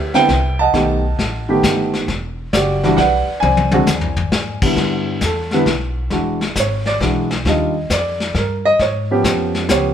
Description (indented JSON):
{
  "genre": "jazz piano trio",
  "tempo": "134 BPM",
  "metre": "3/4",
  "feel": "swing 68% on 8ths",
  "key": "unclear",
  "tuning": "A4 = 440 Hz",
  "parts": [
    { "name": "warm baby grand piano", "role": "melody", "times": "0.0-9.9 s", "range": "D3 to A5", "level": "-16 LUFS", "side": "right 1 dB", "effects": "none" },
    { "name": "upright bass", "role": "bass", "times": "0.0-9.9 s", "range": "E1 to Ab2", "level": "-22 LUFS", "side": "equal", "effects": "none" },
    { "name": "vintage brush drum kit", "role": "drums", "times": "0.1-9.9 s", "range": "brushed snare drum, crash cymbal, hi-hat, kick drum, snare drum, toms", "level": "-20 LUFS", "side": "left 3 dB", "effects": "none" }
  ],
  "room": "light reverb",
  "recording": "band playing live in one room",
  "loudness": "-15 LUFS",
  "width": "side -9 dB against mid",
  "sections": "0.0-4.8 A section; 4.8-9.9 B section",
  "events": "drum fill 3.4-4.3; grand piano solo 4.8-9.9",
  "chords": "0.0 Cmaj9; 0.7 B7b13; 2.1 Em9; 3.4 Ab(#11); 4.8 G6; 6.1 E9; 7.5 Ebmaj9; 8.8 C#7#11",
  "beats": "0.29 | 0.74 1.19 1.63 | 2.08 2.53 2.98 | 3.43 3.87 4.32 | 4.77 5.22 5.67 | 6.11 6.56 7.01 | 7.46 7.90 8.35 | 8.80 9.25 9.70"
}